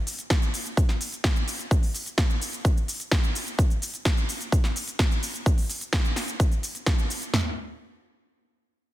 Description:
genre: EDM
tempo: 128 BPM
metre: 4/4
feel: straight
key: none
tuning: none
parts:
  - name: big-room dance drum kit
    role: drums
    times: 0.1-7.3 s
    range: hi-hat, shaker, snare drum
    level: -29 LUFS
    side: equal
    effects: none
  - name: big-room dance drum kit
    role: drums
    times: 0.3-7.4 s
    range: kick drum, snare drum, toms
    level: -22 LUFS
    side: equal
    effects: none
room: little or no reverb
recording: dense, heavily limited modern master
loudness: -23 LUFS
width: side -15 dB against mid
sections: 0.0-7.3 A section; 7.3-8.9 B section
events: none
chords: none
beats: 0.30 0.77 1.24 | 1.71 2.18 2.65 3.12 | 3.59 4.05 4.52 4.99 | 5.46 5.93 6.40 6.87 | 7.34

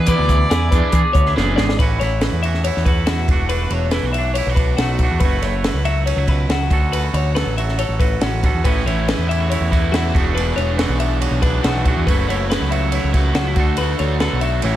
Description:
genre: math rock and midwest emo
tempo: 140 BPM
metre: 4/4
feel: straight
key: A major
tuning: A4 = 441 Hz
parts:
  - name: cranked stack guitar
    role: melody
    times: 0.0-1.3 s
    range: D5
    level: -22 LUFS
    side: equal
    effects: overdrive, digital delay
  - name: twangy electric guitar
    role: accompaniment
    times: 0.0-14.8 s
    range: E2 to A4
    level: -25 LUFS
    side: right 7 dB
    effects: plate reverb
  - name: twelve-string electric guitar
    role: arpeggios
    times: 0.0-14.8 s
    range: F#4 to E5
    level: -24 LUFS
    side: left 7 dB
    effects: plate reverb, digital delay
  - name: growling picked electric bass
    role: bass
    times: 0.0-14.7 s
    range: E1 to E3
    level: -20 LUFS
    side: equal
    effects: overdrive
  - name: overdriven electric guitar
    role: riff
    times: 0.1-1.6, 8.7-14.8 s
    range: A2 to G#4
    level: -24 LUFS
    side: right 1 dB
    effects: none
  - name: compact cocktail drum kit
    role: drums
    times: 0.1-14.7 s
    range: hi-hat, kick drum, ride cymbal, snare drum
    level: -20 LUFS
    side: equal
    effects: none
room: light reverb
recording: none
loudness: -15 LUFS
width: side -13 dB against mid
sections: 0.0-1.8 A section; 1.8-14.8 B section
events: drum fill 1.4-1.8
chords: 0.0 E7; 1.8 A69; 3.3 E9sus4; 5.2 F#m7; 6.7 Dmaj7; 8.6 A69; 10.1 E9sus4; 12.1 F#m7; 13.6 Dmaj7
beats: | 0.07 0.50 0.93 1.36 | 1.78 2.21 2.64 3.07 | 3.50 3.93 4.36 4.79 | 5.21 5.64 6.07 6.50 | 6.93 7.36 7.79 8.21 | 8.64 9.07 9.50 9.93 | 10.36 10.79 11.21 11.64 | 12.07 12.50 12.93 13.36 | 13.78 14.21 14.64

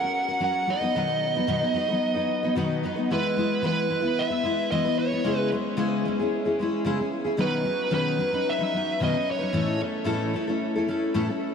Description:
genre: rock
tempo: 112 BPM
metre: 4/4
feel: straight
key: E major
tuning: A4 = 440 Hz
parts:
  - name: smooth overdriven lead guitar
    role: melody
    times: 0.0-9.8 s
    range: B4 to F#5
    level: -27 LUFS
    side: right 2 dB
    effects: ping-pong delay
  - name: picked steel-string acoustic guitar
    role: accompaniment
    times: 0.0-11.5 s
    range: A2 to B4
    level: -25 LUFS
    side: left 2 dB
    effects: wide subtle chorus
room: wet huge ambient reverb, RT60 7.7 s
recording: dreamy mix soaked in reverb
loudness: -23 LUFS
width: side -6 dB against mid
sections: 0.0-3.1 A section; 3.1-11.5 B section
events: none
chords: 0.0 F#; 0.7 B; 3.1 E; 5.3 C#m; 7.4 Badd9; 9.6 A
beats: 0.43 | 0.97 1.50 2.04 2.58 | 3.11 3.65 4.18 4.72 | 5.26 5.79 6.33 6.87 | 7.40 7.94 8.48 9.02 | 9.55 10.09 10.63 11.17

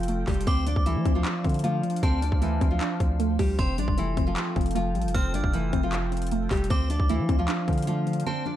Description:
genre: hip hop, trap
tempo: 154 BPM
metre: 4/4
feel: half-time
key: unclear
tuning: A4 = 439 Hz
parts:
  - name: nylon-string guitar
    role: melody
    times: 0.0-8.6 s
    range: E3 to D5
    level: -29 LUFS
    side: equal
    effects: ping-pong delay
  - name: warbly dusty pluck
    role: accompaniment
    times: 0.0-8.6 s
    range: D3 to F4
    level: -32 LUFS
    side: right 1 dB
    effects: chorus, phaser
  - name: sweeping resonant pad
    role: sustained chords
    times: 0.0-8.6 s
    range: D4 to G5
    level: -39 LUFS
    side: right 1 dB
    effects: chorus
  - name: long sustained 808-style bass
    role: bass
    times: 0.0-8.2 s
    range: F1 to F3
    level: -27 LUFS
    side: equal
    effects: none
  - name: trap drum kit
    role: drums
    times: 0.0-8.3 s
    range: handclaps, hi-hat, kick drum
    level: -28 LUFS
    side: equal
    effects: overdrive
  - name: metallic FM bell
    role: second line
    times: 0.5-8.6 s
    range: A5 to F6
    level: -36 LUFS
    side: equal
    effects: chorus, ping-pong delay
room: digital ambience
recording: dark, warm production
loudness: -23 LUFS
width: side -12 dB against mid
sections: 0.0-8.6 A section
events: break 8.3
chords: 0.5 Dm7; 3.6 Fadd9; 6.7 Dm7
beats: 0.08 | 0.47 0.86 1.25 1.64 | 2.03 2.42 2.81 3.20 | 3.59 3.98 4.37 4.76 | 5.15 5.54 5.92 6.32 | 6.70 7.09 7.48 7.87 | 8.26

